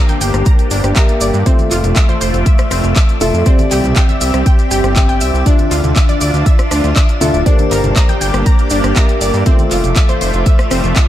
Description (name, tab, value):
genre	progressive house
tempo	120 BPM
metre	4/4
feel	straight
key	unclear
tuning	A4 = 439 Hz
part	lush unison pad	sustained chords	0.0-11.1 s	A3 to E5	-21 LUFS	equal	chorus, phaser, sidechain pumping
part	wide unison pluck	arpeggios	0.0-11.1 s	C4 to Bb6	-21 LUFS	equal	vintage 12-bit sampler grit, sidechain pumping, tape echo
part	felt-muted upright piano	stabs	0.0-11.1 s	A3 to G5	-20 LUFS	left 1 dB	sidechain pumping, tape echo
part	drifting glass-harmonics texture	texture	0.1-11.1 s	D5 to D6	-27 LUFS	left 1 dB	chorus, built-in reverb, sidechain pumping
part	pop drum kit	drums	0.1-11.1 s	handclaps, hi-hat, rim click	-21 LUFS	left 1 dB	none
part	congas	percussion	0.1-10.2 s	none	-26 LUFS	left 1 dB	sidechain pumping on perc
part	maracas	percussion	0.1-11.1 s	none	-26 LUFS	right 4 dB	none
part	fat analog bass	bass	0.2-10.9 s	D1 to G2	-16 LUFS	equal	tube saturation, sidechain pumping
part	electronic kick drum	drums	0.5-11.1 s	none	-11 LUFS	equal	none
room	light reverb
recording	dark, warm production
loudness	-10 LUFS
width	side -12 dB against mid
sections	0.0-11.1 A section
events	none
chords	0.0 Gm; 1.5 Fmaj7; 3.5 C; 5.5 Dmadd9; 7.5 Gm; 9.5 Fmaj7